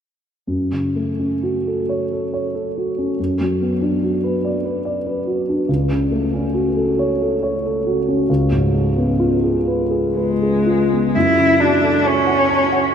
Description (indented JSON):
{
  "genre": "classical, romantic duo for cello and grand piano",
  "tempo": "57-73 BPM",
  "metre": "3/4",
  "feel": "rubato",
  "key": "F# minor",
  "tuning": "A4 = 440 Hz",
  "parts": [
    { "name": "dark concert grand piano", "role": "accompaniment", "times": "0.5-12.9 s", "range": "C#2 to A5", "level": "-17 LUFS", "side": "equal", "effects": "none" },
    { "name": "warm cello", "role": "melody", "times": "10.2-12.9 s", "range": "G#3 to E4", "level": "-15 LUFS", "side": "equal", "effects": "none" }
  ],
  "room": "wet huge ambient reverb, RT60 7.9 s",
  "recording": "in a vast, echoing space",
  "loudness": "-16 LUFS",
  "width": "side -8 dB against mid",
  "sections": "0.5-11.2 A section; 11.2-12.9 B section",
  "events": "none",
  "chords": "0.5 F#m; 3.2 Bm/F#; 5.7 F#m/C#; 8.3 C#7; 11.2 F#m"
}